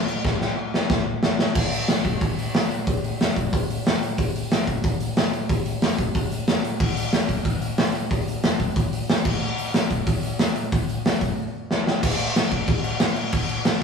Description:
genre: punk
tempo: 184 BPM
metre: 4/4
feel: straight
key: none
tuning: none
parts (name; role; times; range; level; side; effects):
- big rock drum kit; drums; 0.1-13.7 s; crash cymbal, hi-hat, kick drum, snare drum; -20 LUFS; equal; none
room: moderate stone room reverb, RT60 1.2 s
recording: rough rehearsal-room recording, warm saturation, studio reverb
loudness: -20 LUFS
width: side -6 dB against mid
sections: 0.0-1.6 A section; 1.6-12.0 B section; 12.0-13.8 A section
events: drum fill 0.2-1.6, 11.7-12.0; break 11.4-12.0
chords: none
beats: | 0.25 0.58 0.91 1.23 | 1.56 1.89 2.22 2.54 | 2.87 3.20 3.53 3.86 | 4.18 4.51 4.84 5.17 | 5.50 5.82 6.15 6.48 | 6.80 7.13 7.46 7.78 | 8.11 8.44 8.77 9.09 | 9.42 9.75 10.07 10.40 | 10.73 11.05 11.38 11.71 | 12.03 12.36 12.69 13.01 | 13.34 13.66

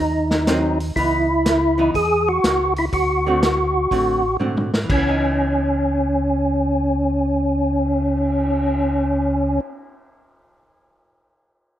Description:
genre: soul jazz organ trio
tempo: 122 BPM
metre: 4/4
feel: swing 67% on 8ths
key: C# minor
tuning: A4 = 441 Hz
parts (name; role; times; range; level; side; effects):
- percussive tonewheel organ; melody; 0.0-9.6 s; C#4 to G#4; -18 LUFS; equal; slow rotary speaker, overdrive, chorus vibrato
- mellow tonewheel organ; bass; 0.0-9.6 s; A1 to G#2; -24 LUFS; equal; slow rotary speaker
- vintage drum kit; drums; 0.3-8.7 s; crash cymbal, cymbal swell, hi-hat, kick drum, snare drum, toms; -25 LUFS; equal; none
- archtop guitar, miked and amplified; accompaniment; 0.5-10.0 s; D3 to F#4; -26 LUFS; right 2 dB; none
room: light reverb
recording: rough home demo mix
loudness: -17 LUFS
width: side -12 dB against mid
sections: 0.0-4.9 A section; 4.9-8.8 B section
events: drum fill 4.4-4.9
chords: 0.0 G#7 (rootless); 1.0 C#m9; 2.9 D7; 4.9 C#m9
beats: 0.47 | 0.96 1.45 1.94 2.44 | 2.93 3.42 3.91 4.41 | 4.90 5.39 5.88 6.38 | 6.87 7.36 7.85 8.35

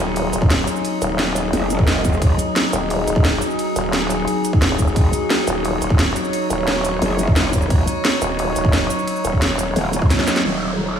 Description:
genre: dark technical drum and bass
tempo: 175 BPM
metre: 4/4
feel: straight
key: Eb minor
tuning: A4 = 440 Hz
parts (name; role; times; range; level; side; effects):
- metallic inharmonic drone; sustained chords; 0.0-11.0 s; Gb3 to Db5; -21 LUFS; left 1 dB; chorus, built-in reverb, sidechain pumping
- vowel-sweep wobble bass; bass; 0.0-9.7 s; Eb1; -23 LUFS; equal; chorus
- drum and bass drum kit; drums; 0.2-11.0 s; cabasa, crash cymbal, hi-hat, ride cymbal, snare drum; -22 LUFS; right 1 dB; low-pass filter on hats, low-pass filter on perc, low-pass filter on snare, low-pass filter on toms, low-pass filter on cymbals, low-pass filter on room
- electronic kick drum; drums; 0.4-10.1 s; none; -16 LUFS; equal; none
- growl bass; bass; 1.5-2.4, 5.0-11.0 s; Eb1 to Gb1; -21 LUFS; equal; chorus, overdrive, sidechain pumping
- downlifter; sound effects; 10.4-11.0 s; none; -34 LUFS; right 1 dB; none
room: moderate lush hall reverb, RT60 1.8 s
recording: dreamy mix soaked in reverb, small room reverb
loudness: -16 LUFS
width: side -8 dB against mid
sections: 0.0-10.4 A section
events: drop 0.0-10.4; drum fill 10.1-10.4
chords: 0.0 Ebm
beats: 0.16 0.50 | 0.85 1.19 1.53 1.88 | 2.22 2.56 2.90 3.25 | 3.59 3.93 4.28 4.62 | 4.96 5.30 5.65 5.99 | 6.33 6.67 7.02 7.36 | 7.70 8.05 8.39 8.73 | 9.07 9.42 9.76 10.10 | 10.45 10.79

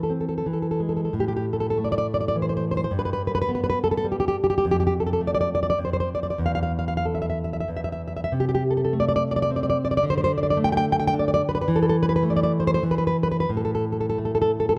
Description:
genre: romantic piece for solo classical guitar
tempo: 85-113 BPM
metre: 3/4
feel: rubato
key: A minor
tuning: A4 = 440 Hz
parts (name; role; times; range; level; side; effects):
- nylon-string guitar; solo; 0.0-14.8 s; E2 to G5; -24 LUFS; equal; none
room: light reverb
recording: close, detailed microphones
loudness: -24 LUFS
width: mono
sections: 0.0-1.1 A section; 1.1-14.8 B section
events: none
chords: 0.5 E; 1.1 A5; 2.9 G; 4.6 F69; 5.8 N.C.; 6.4 A5/E; 7.7 N.C.; 8.3 Am/C; 10.0 D5; 11.7 A5/E; 12.8 N.C.; 13.5 A5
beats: 0.46 | 1.14 1.76 2.35 | 2.94 3.52 4.08 | 4.64 5.20 5.79 | 6.40 7.05 7.69 | 8.32 8.93 9.50 | 10.04 10.58 11.14 | 11.68 12.23 12.83 | 13.51 14.18

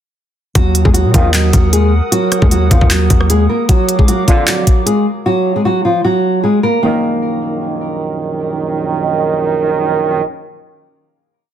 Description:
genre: hip hop, trap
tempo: 153 BPM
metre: 4/4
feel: half-time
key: Eb harmonic minor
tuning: A4 = 440 Hz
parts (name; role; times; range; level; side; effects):
- nylon-string guitar; melody; 0.6-8.0 s; F3 to Bb4; -14 LUFS; equal; none
- warbly tape-like pad; sustained chords; 1.0-5.2 s; Bb4 to Eb6; -25 LUFS; right 1 dB; chorus, built-in reverb
- hard-hitting 808-style bass; bass; 0.6-3.5 s; Eb2 to Bb2; -13 LUFS; equal; none
- trap drum kit; drums; 0.6-5.0 s; handclaps, hi-hat, kick drum, rim click; -12 LUFS; equal; none
- mellow brass ensemble; stabs; 1.1-1.5, 4.3-10.2 s; Bb1 to Eb3; -16 LUFS; right 5 dB; none
room: light reverb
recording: dense, heavily limited modern master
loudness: -11 LUFS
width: side -10 dB against mid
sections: 0.6-6.8 hook; 6.8-10.0 final chord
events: none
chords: 0.6 Ebm; 3.7 Bb; 6.8 Ebm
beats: | 0.55 0.94 1.34 1.73 | 2.12 2.51 2.91 3.30 | 3.69 4.08 4.47 4.87 | 5.26 5.65 6.04 6.43 | 6.83 7.22 7.61 8.00 | 8.40 8.79 9.18 9.57

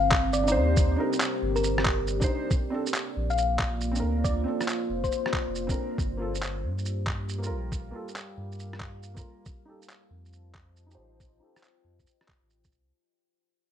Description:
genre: future garage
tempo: 138 BPM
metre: 4/4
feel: swing 65% on 16ths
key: unclear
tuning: A4 = 440 Hz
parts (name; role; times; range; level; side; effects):
- thumb-piano-like synth pluck; melody; 0.0-5.5 s; Bb4 to F5; -30 LUFS; left 3 dB; chorus, digital delay
- deep dark ambient pad; sustained chords; 0.0-12.9 s; G3 to A5; -32 LUFS; equal; chorus, built-in reverb, sidechain pumping
- warm sub bass; bass; 0.0-12.9 s; F1 to G2; -30 LUFS; equal; sidechain pumping
- electronic handclaps, shaker and rim click; drums; 0.1-12.8 s; none; -31 LUFS; right 1 dB; small room ambience
- electronic kick drum; drums; 0.1-12.7 s; none; -28 LUFS; equal; small room ambience
- felt-muted upright piano; accompaniment; 0.4-11.6 s; Bb3 to C5; -34 LUFS; right 2 dB; sidechain pumping, low-pass filter, digital delay
room: moderate plate reverb, RT60 1.0 s, digital ambience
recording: bright 1980s-style digital production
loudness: -25 LUFS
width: side -9 dB against mid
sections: 0.0-12.9 A section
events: fade-out 0.0-12.9; filter sweep on felt piano 0.0-12.9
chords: 0.0 Cm9; 2.5 Bbadd9; 6.0 Gm7; 9.5 F9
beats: 0.33 | 0.76 1.20 1.63 2.07 | 2.50 2.94 3.37 3.81 | 4.24 4.67 5.11 5.54 | 5.98 6.41 6.85 7.28 | 7.72 8.15 8.59 9.02 | 9.46 9.89 10.33 10.76 | 11.20 11.63 12.07 12.50

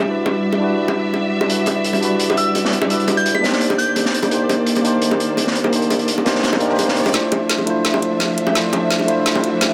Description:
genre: liquid drum and bass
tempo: 170 BPM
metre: 4/4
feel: straight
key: unclear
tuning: A4 = 445 Hz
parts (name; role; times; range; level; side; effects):
- muted studio string section; sustained chords; 0.0-9.7 s; Eb3 to E5; -25 LUFS; equal; none
- bongos; percussion; 0.0-9.7 s; none; -25 LUFS; equal; none
- tine electric piano; accompaniment; 0.1-9.7 s; G3 to D5; -22 LUFS; equal; dub echo
- crunchy breakbeat drum kit; drums; 1.5-7.1 s; hi-hat, snare drum; -24 LUFS; equal; high-pass filter on hats, high-pass filter on snare, high-pass filter on room
- soft synth bell; melody; 2.4-4.3 s; E6 to B6; -25 LUFS; equal; chorus, phaser, delay
- riser; sound effects; 6.0-9.7 s; none; -34 LUFS; equal; none
- garage drum kit; drums; 7.1-9.7 s; hi-hat, snare drum; -23 LUFS; equal; high-pass filter on snare, high-pass filter on hats, high-pass filter on room
room: moderate lush hall reverb, RT60 2.0 s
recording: none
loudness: -18 LUFS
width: mono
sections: 0.0-7.1 A section; 7.1-9.7 B section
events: build-up 7.1-9.7; drum fill 7.1-9.7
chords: 0.0 Em9; 3.4 Cm9; 7.1 Dm9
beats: | 0.08 0.43 0.79 1.14 | 1.49 1.85 2.20 2.55 | 2.90 3.26 3.61 3.96 | 4.32 4.67 5.02 5.38 | 5.73 6.08 6.43 6.79 | 7.14 7.49 7.85 8.20 | 8.55 8.90 9.26 9.61

